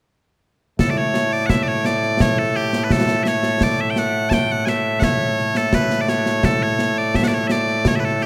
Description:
scottish traditional, Scottish pipe music; 85 BPM; 2/4; straight; A mixolydian; A4 = 441 Hz
loud bright bagpipes; melody; 0.8-8.3 s; A2 to A5; -21 LUFS; equal
concert snare drum and concert bass drum; drums; 0.8-8.3 s; -23 LUFS; equal
moderate concert hall reverb, RT60 2.0 s; -19 LUFS; mono
0.8-8.3 A section

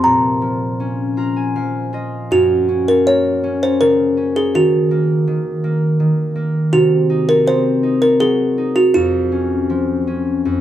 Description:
children's music, lullaby; 81 BPM; 3/4; rubato; A4 = 439 Hz
music box; melody; 0.0-10.6 s; F4 to Bb5; -15 LUFS; right 1 dB
concert harp; accompaniment; 0.0-10.6 s; F2 to Bb5; -17 LUFS; left 2 dB
moderate studio reverb, RT60 0.7 s; band playing live in one room; -14 LUFS; side -11 dB against mid
0.0-2.3 A section; 2.3-10.6 B section
harp fill 0.8-2.3
0.1 Bbm; 2.3 Gb; 4.5 Ebm; 6.7 Cdim; 8.9 Db/F

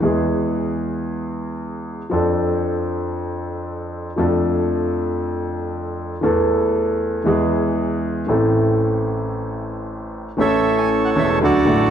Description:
tango; 116 BPM; 4/4; rubato; A minor; A4 = 440 Hz
warm concert grand piano; accompaniment; 0.0-11.9 s; E1 to A4; -18 LUFS; equal
bandoneon; melody; 10.4-11.9 s; F#4 to G#5; -18 LUFS; right 2 dB
moderate recital hall reverb, RT60 1.6 s; -18 LUFS; side -9 dB against mid
0.0-10.4 A section; 10.4-11.9 B section
0.0 E; 2.1 F6; 4.2 Dm/F; 6.2 Esus4; 7.3 E; 8.3 Am; 10.4 A

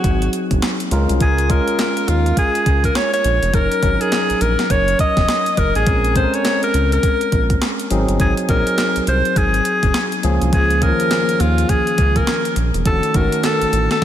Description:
R&B, new jack swing; 103 BPM; 4/4; swing 61% on 16ths; A4 = 440 Hz
bright alto saxophone; melody; 0.0-14.0 s; F4 to Eb5; -19 LUFS; equal; slapback echo
tine electric piano; accompaniment; 0.0-14.0 s; Eb3 to Bb4; -22 LUFS; left 1 dB; medium stereo tremolo, slapback echo
round analog bass; bass; 0.0-13.9 s; E1 to Eb2; -19 LUFS; equal
clean 12-bit digital drum machine; drums; 0.0-14.0 s; handclaps, hi-hat, kick drum, snare drum; -20 LUFS; equal; overdrive
moderate lush hall reverb, RT60 2.6 s; big arena sound; -14 LUFS; side -10 dB against mid
0.0-14.0 A section
0.0 Ab7; 0.9 Db6; 3.5 Gb6; 5.9 Bbm9; 7.9 Ab7; 10.2 Db6; 12.9 F7b9b13

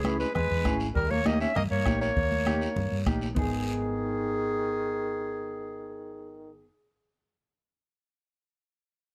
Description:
latin, cumbia; 199 BPM; 4/4; straight; G# harmonic minor; A4 = 441 Hz
clear clarinet; melody; 0.0-6.5 s; G#4 to E5; -33 LUFS; equal; analog delay
bright trombone; second line; 0.0-6.5 s; D#3 to C#4; -39 LUFS; equal
mellow electric guitar; accompaniment; 0.0-6.7 s; A#3 to B4; -35 LUFS; equal
woody fretless electric bass; bass; 0.0-6.7 s; G#1 to G2; -35 LUFS; equal; subtle chorus
bombo; percussion; 0.0-3.4 s; -34 LUFS; equal
congas; percussion; 0.0-3.4 s; -37 LUFS; equal
guiro; percussion; 0.0-3.4 s; -46 LUFS; equal
moderate studio ambience, RT60 0.5 s; dark, warm production; -28 LUFS; mono
0.0-3.4 A section; 3.4-5.8 B section
0.0 C#m; 1.0 D#7; 3.4 G#m

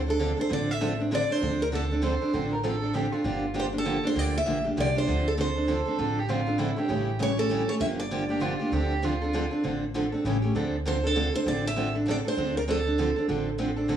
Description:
acoustic string swing (jazz manouche); 197 BPM; 3/4; swing 60% on 8ths; D minor; A4 = 441 Hz
upright bass; bass; 0.0-14.0 s; G1 to D2; -31 LUFS; equal
picked steel-string acoustic guitar; melody; 0.1-13.3 s; A4 to E5; -29 LUFS; right 2 dB; plate reverb
picked steel-string acoustic guitar; accompaniment; 0.1-14.0 s; C#3 to A4; -28 LUFS; equal; plate reverb
picked steel-string acoustic guitar; accompaniment; 0.2-14.0 s; D3 to A4; -36 LUFS; right 8 dB; plate reverb
warm violin; second line; 2.0-3.5, 5.7-9.6 s; E4 to C5; -34 LUFS; right 5 dB; plate reverb
moderate studio reverb, RT60 0.5 s; home recording on cassette, studio ambience; -24 LUFS; side -9 dB against mid
0.0-10.6 A section; 10.6-14.0 A section
0.0 Dm7/A; 3.2 Gm7; 5.1 Dm7; 6.9 A7; 7.8 Gm7; 8.7 Dm7; 10.2 A7; 10.6 Dm7

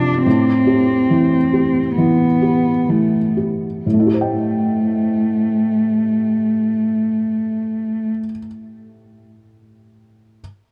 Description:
neoclassical piano and strings; 60-73 BPM; 4/4; rubato; A minor; A4 = 440 Hz
dark cello; second line; 0.0-8.1 s; A3 to D4; -19 LUFS; equal
felt-muted upright piano; accompaniment; 0.0-10.4 s; F2 to G5; -22 LUFS; equal
light reverb; dark, warm production; -17 LUFS; mono
0.0-3.8 A section; 3.8-7.6 B section
slowing down 0.0-3.8
0.2 Am7

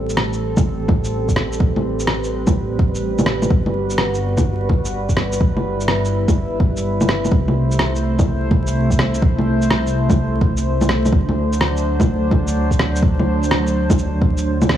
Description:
future garage; 126 BPM; 4/4; swing 67% on 16ths; A dorian; A4 = 439 Hz
warbly tape-like pad; sustained chords; 0.0-14.8 s; F#3 to C5; -22 LUFS; equal; chorus, built-in reverb, sidechain pumping
dark detuned saw bass; bass; 0.0-14.8 s; G1 to D2; -21 LUFS; equal; sidechain pumping
electronic shaker, rim click and bongos; drums; 0.1-14.8 s; -20 LUFS; equal; studio reverb
electronic kick drum; drums; 0.6-14.3 s; -18 LUFS; equal; overdrive, studio reverb
little or no reverb; dry, gritty hardware recording, vinyl crackle, small room ambience; -15 LUFS; side -11 dB against mid
0.0-14.8 A section
kick drops out 14.5-14.8
0.0 Am7; 3.5 Gmaj7; 7.3 C6; 11.1 D7

